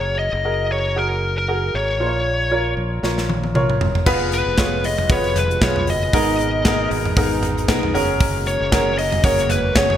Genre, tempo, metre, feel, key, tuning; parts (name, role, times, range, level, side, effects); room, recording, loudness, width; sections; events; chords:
piano-driven pop; 116 BPM; 4/4; swing 56% on 16ths; A4 = 440 Hz
biting lead guitar; melody; 0.0-10.0 s; Bb4 to Eb5; -22 LUFS; left 2 dB; overdrive
clear baby grand piano; accompaniment; 0.0-10.0 s; Ab2 to Db5; -22 LUFS; equal; lush chorus
modern bright fingered electric bass; bass; 0.0-10.0 s; F1 to Cb2; -25 LUFS; equal
modern studio drum kit; drums; 3.0-10.0 s; crash cymbal, hi-hat, kick drum, snare drum, toms; -20 LUFS; equal; gated reverb
lush unison pad; sustained chords; 4.1-10.0 s; Cb3 to Cb5; -30 LUFS; equal; chorus, phaser
moderate plate reverb, RT60 1.5 s, small room reverb; bright 1980s-style digital production; -17 LUFS; side -10 dB against mid
0.0-4.1 A section; 4.1-10.0 B section
drum fill 3.0-4.1
0.0 Gbadd9; 2.0 Bbm; 4.1 Fdim; 6.1 Abmadd9; 7.9 Gbadd9